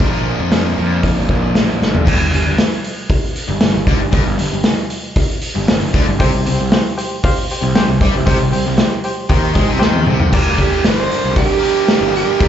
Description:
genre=classic rock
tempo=116 BPM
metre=4/4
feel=straight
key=G minor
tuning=A4 = 440 Hz
part: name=distorted electric guitar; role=riff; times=0.0-12.5 s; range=G2 to Bb4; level=-21 LUFS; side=left 12 dB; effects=overdrive, slapback echo
part: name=raw garage guitar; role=riff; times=0.0-12.5 s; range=G2 to D4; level=-23 LUFS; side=right 14 dB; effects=overdrive, slapback echo
part: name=fuzz picked electric bass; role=bass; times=0.0-12.5 s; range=G1 to Ab2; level=-19 LUFS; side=equal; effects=overdrive
part: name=vintage drum kit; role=drums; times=0.0-12.5 s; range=crash cymbal, hi-hat, kick drum, snare drum, toms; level=-15 LUFS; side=equal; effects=none
part: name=barky reed electric piano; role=accompaniment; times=6.2-12.5 s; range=G4 to G5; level=-23 LUFS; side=left 2 dB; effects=overdrive, fast tremolo, slapback echo
part: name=growling tenor saxophone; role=melody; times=10.6-12.5 s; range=G4 to C5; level=-17 LUFS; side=right 7 dB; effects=slapback echo
room=little or no reverb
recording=live gig heard through the venue's PA, club reverb, nothing above 7.8 kHz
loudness=-13 LUFS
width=side -10 dB against mid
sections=0.0-2.1 A section; 2.1-10.3 B section; 10.3-12.5 C section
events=drum fill 1.8, 9.8-10.3; tenor saxophone solo 10.3-12.5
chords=0.0 Bb; 2.1 G5; 6.2 C5; 10.3 Gm

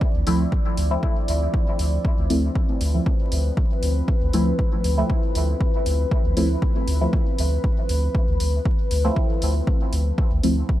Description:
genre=dub techno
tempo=118 BPM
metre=4/4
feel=straight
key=D dorian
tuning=A4 = 440 Hz
part: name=deep dark ambient pad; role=sustained chords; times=0.0-10.8 s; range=F3 to D5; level=-29 LUFS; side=left 2 dB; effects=chorus, built-in reverb, sidechain pumping
part: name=electronic kick drum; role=drums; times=0.0-10.8 s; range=none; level=-22 LUFS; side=equal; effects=none
part: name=warm sub bass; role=bass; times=0.1-10.6 s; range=D2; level=-22 LUFS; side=equal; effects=sidechain pumping
part: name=deep mellow chord stab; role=stabs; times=0.3-10.5 s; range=F3 to E4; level=-26 LUFS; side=equal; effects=chorus, phaser, sidechain pumping, dub echo
part: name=electronic hi-hat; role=drums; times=0.3-10.5 s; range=none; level=-34 LUFS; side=left 1 dB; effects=none
room=little or no reverb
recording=dark, warm production, vinyl crackle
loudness=-19 LUFS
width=side -14 dB against mid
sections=0.0-10.2 A section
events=none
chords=0.0 Dm7

